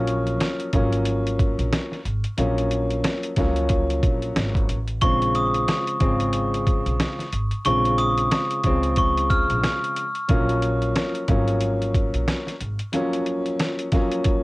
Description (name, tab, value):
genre	hip hop, boom-bap hip-hop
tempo	91 BPM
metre	4/4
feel	swing 58% on 16ths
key	unclear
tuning	A4 = 440 Hz
part	warm upright piano	accompaniment	0.0-14.4 s	Db3 to Db4	-24 LUFS	left 1 dB	cassette tape
part	upright bass	bass	0.0-12.8 s	Ab1 to Db2	-25 LUFS	equal	none
part	boom bap sampler-style drum kit	drums	0.1-14.4 s	hi-hat, kick drum, rim click, snare drum	-24 LUFS	equal	cassette tape
part	glockenspiel with brass mallets	melody	5.0-10.2 s	Db6 to F6	-25 LUFS	equal	cassette tape, tape echo
room	light reverb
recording	home recording on cassette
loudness	-20 LUFS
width	side -21 dB against mid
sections	0.0-14.4 A section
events	none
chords	0.0 Ab13sus4; 5.0 Bbm7; 10.3 Ab13sus4